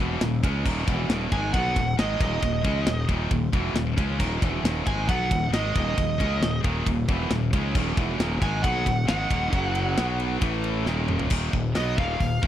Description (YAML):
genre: heavy metal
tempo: 135 BPM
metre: 4/4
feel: straight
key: Eb minor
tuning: A4 = 440 Hz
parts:
  - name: pipe organ, foundations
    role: sustained chords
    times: 0.0-11.3 s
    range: Eb3 to F5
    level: -38 LUFS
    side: equal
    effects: none
  - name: scooped high-gain guitar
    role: riff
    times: 0.0-12.5 s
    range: Eb2 to Db4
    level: -30 LUFS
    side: left 9 dB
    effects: distortion
  - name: tight distorted guitar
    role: riff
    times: 0.0-12.5 s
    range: Eb2 to Db4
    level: -31 LUFS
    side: right 10 dB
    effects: distortion
  - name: fuzz fingered electric bass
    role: bass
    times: 0.0-12.5 s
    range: Eb1 to Db2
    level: -28 LUFS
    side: equal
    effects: overdrive
  - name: tight metal drum kit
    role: drums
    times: 0.2-12.5 s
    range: crash cymbal, hi-hat, kick drum, ride cymbal, snare drum, toms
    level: -26 LUFS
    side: equal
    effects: none
  - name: nasal lead guitar with a parked wah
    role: melody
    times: 1.3-12.4 s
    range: Eb5 to Ab5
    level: -28 LUFS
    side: right 2 dB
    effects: overdrive, slapback echo
room: little or no reverb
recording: dry, close 1970s-style studio recording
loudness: -22 LUFS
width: side -11 dB against mid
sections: 0.0-11.3 A section; 11.3-12.5 B section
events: drum fill 10.9-11.3; lead electric guitar solo 11.3-12.5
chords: 0.0 Ebm; 9.5 Gb5; 10.0 B5; 10.4 A5; 10.9 Eb5; 11.3 Ebm